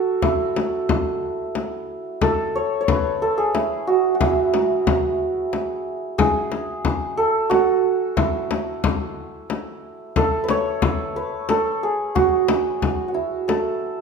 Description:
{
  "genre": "Persian modal ensemble",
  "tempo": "90 BPM",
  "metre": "3/4",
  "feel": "straight",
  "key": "A dastgah mahur",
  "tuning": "A4 = 440 Hz",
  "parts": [
    { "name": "santur", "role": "melody", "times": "0.0-14.0 s", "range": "E4 to C#5", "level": "-21 LUFS", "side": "right 3 dB", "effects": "none" },
    { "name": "frame drum", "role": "percussion", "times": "0.2-13.6 s", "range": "none", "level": "-23 LUFS", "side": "left 5 dB", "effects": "none" }
  ],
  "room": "moderate recital hall reverb, RT60 1.4 s",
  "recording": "minimal, uncompressed stereo recording",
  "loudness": "-19 LUFS",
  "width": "side -5 dB against mid",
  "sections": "0.0-14.0 A section",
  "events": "none",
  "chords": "none"
}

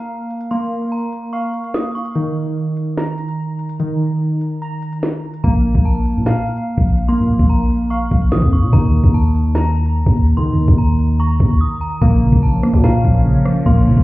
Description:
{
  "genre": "hip hop, drill",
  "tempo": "146 BPM",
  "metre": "4/4",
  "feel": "half-time",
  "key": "Bb harmonic minor",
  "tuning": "A4 = 441 Hz",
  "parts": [
    { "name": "metallic FM bell", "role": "second line", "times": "0.0-2.1, 5.4-14.0 s", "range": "A5 to Eb6", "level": "-28 LUFS", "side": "right 1 dB", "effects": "chorus, tape echo" },
    { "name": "warbly lo-fi synth keys", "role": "arpeggios", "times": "0.0-14.0 s", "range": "Eb3 to Bb5", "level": "-20 LUFS", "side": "equal", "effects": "chorus, low-pass filter, tape echo" },
    { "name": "drill drum kit", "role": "drums", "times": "0.0-14.0 s", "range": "hi-hat, kick drum, rim click, snare drum", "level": "-16 LUFS", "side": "equal", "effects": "none" },
    { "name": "growling 808-style bass", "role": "bass", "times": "5.4-14.0 s", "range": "Bb1 to F3", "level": "-16 LUFS", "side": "equal", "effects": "none" },
    { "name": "warbly dusty pluck", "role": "accompaniment", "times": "12.0-14.0 s", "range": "Bb2 to Bb3", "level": "-16 LUFS", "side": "equal", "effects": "chorus, low-pass filter" },
    { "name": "sweeping resonant pad", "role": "sustained chords", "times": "12.0-14.0 s", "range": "F3 to Bb4", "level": "-24 LUFS", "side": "equal", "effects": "chorus" }
  ],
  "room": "digital ambience",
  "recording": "heard muffled through a wall, club reverb, EQ",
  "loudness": "-14 LUFS",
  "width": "side -18 dB against mid",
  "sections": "0.0-12.0 A section; 12.0-14.0 B section",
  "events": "break 0.0-5.4, 11.6-12.0",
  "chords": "0.0 Bbm; 2.2 Eb5; 5.4 Bb5; 8.7 Eb5; 12.0 Bbm"
}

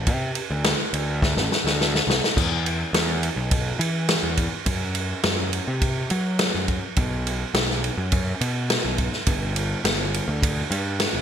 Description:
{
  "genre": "indie rock",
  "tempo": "104 BPM",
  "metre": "4/4",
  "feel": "straight",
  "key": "E minor",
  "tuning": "A4 = 440 Hz",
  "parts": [
    { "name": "fuzz picked electric bass", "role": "bass", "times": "0.0-11.2 s", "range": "G1 to F#3", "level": "-25 LUFS", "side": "equal", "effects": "overdrive" },
    { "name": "vintage drum kit", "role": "drums", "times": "0.1-11.1 s", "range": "crash cymbal, kick drum, ride cymbal, snare drum", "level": "-23 LUFS", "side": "equal", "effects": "gated reverb" }
  ],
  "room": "light reverb",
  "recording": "bright 1980s-style digital production",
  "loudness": "-21 LUFS",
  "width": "side -8 dB against mid",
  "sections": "0.0-2.4 A section; 2.4-11.2 B section",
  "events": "drum fill 1.2-2.4",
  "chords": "none"
}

